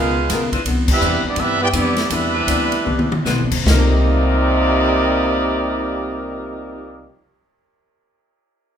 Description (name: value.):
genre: jazz, big band swing.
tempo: 144-170 BPM.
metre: 4/4.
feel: swing 64% on 8ths.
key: unclear.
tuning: A4 = 440 Hz.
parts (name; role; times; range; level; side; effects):
clear trumpet section; melody; 0.0-7.0 s; Bb3 to G5; -21 LUFS; right 1 dB; none.
warm trombone section; second line; 0.0-7.0 s; C3 to G4; -22 LUFS; right 1 dB; none.
archtop guitar, miked and amplified; accompaniment; 0.0-7.2 s; C3 to Bb4; -24 LUFS; left 4 dB; none.
upright bass; bass; 0.0-7.0 s; E1 to G2; -22 LUFS; equal; none.
swinging big-band drum kit; drums; 0.3-3.8 s; crash cymbal, hi-hat, kick drum, ride cymbal, snare drum, toms; -21 LUFS; left 1 dB; none.
mellow saxophone section; sustained chords; 0.5-7.1 s; C3 to B4; -27 LUFS; left 1 dB; none.
room: wet large studio reverb, RT60 0.8 s.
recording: minimal, uncompressed stereo recording.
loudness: -15 LUFS.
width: side -8 dB against mid.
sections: 0.0-3.7 A section; 3.7-7.0 B section.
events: slowing down 0.6-3.7; band accent 0.8; drum fill 2.9-3.3.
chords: 0.0 Db13; 0.6 Cmaj9; 3.7 Cm11.